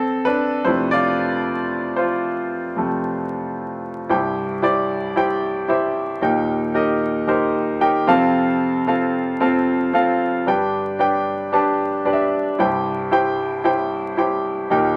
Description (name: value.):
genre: pop.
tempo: 113 BPM.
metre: 4/4.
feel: straight.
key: C major.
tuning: A4 = 439 Hz.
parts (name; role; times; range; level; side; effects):
warm grand piano; solo; 0.0-15.0 s; C2 to A5; -20 LUFS; equal; none.
room: wet studio ambience, RT60 0.4 s.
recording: vinyl crackle.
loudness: -20 LUFS.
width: mono.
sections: 0.0-4.1 A section; 4.1-15.0 B section.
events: grand piano solo 0.0-4.1; grand piano fill 7.5-8.3.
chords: 0.0 F; 4.1 C; 6.2 Eb; 8.1 F; 10.5 G; 12.6 C.